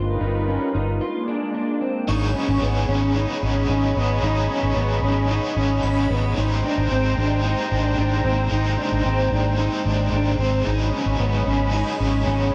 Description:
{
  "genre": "dream pop",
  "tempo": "112 BPM",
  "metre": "4/4",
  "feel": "straight",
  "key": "unclear",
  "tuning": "A4 = 440 Hz",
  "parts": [
    { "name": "warm analog pad", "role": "sustained chords", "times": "0.0-12.5 s", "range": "G3 to B5", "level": "-29 LUFS", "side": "equal", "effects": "subtle chorus" },
    { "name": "electric guitar at the edge of break-up", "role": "arpeggios", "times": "0.0-12.5 s", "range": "B3 to F4", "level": "-27 LUFS", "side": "equal", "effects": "ensemble chorus, digital delay" },
    { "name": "vintage muted fingered electric bass", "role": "bass", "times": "0.0-12.5 s", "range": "G1 to G#1", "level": "-24 LUFS", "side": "equal", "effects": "none" },
    { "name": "biting overdriven guitar", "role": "accompaniment", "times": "2.1-12.5 s", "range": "G#2 to C5", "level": "-31 LUFS", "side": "equal", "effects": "tremolo, lush chorus" },
    { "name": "shimmering bell with halo", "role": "texture", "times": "2.1-2.6, 5.8-6.4, 11.7-12.3 s", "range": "G#5 to C#6", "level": "-38 LUFS", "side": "equal", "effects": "ensemble chorus, digital delay" }
  ],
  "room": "moderate plate reverb, RT60 2.5 s",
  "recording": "dark, warm production",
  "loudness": "-22 LUFS",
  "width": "mono",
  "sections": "0.0-2.1 A section; 2.1-12.5 B section",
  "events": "break 1.0-2.1",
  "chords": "0.0 G7alt; 1.0 Bb7; 2.1 B69/G#; 6.4 Abmaj9; 10.7 B69/G#",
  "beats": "0.48 1.02 1.55 | 2.09 2.62 3.16 3.70 | 4.23 4.77 5.30 5.84 | 6.37 6.91 7.45 7.98 | 8.52 9.05 9.59 10.12 | 10.66 11.20 11.73 12.27"
}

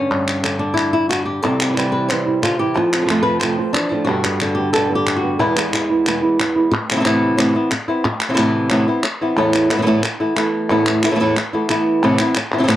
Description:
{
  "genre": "flamenco",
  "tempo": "182 BPM",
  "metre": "4/4",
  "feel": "straight",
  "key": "unclear",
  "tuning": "A4 = 439 Hz",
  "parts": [
    { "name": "flamenco guitar", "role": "melody", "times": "0.0-12.8 s", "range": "E2 to C5", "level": "-17 LUFS", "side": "equal", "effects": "none" },
    { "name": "palmas hand claps", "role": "percussion", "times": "0.1-12.8 s", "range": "none", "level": "-22 LUFS", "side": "left 1 dB", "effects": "none" },
    { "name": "flamenco guitar", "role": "stabs", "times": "1.4-6.7, 9.4-12.0 s", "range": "E2 to G4", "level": "-22 LUFS", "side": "right 5 dB", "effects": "analog delay" }
  ],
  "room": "light reverb",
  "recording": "dry, gritty hardware recording, cassette tape",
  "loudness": "-15 LUFS",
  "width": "side -13 dB against mid",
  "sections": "0.0-6.7 A section; 6.7-12.0 B section",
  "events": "none",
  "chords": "0.0 G5; 1.4 C; 2.8 F; 4.1 G; 5.4 E; 6.7 Amadd9; 9.4 Esus4; 12.0 Amadd9",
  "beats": "| 0.12 0.45 0.78 1.11 | 1.44 1.77 2.10 2.43 | 2.76 3.09 3.42 3.75 | 4.08 4.41 4.74 5.07 | 5.40 5.73 6.06 6.39 | 6.72 7.05 7.38 7.71 | 8.04 8.38 8.71 9.04 | 9.37 9.70 10.03 10.36 | 10.69 11.03 11.36 11.69 | 12.02 12.35 12.68"
}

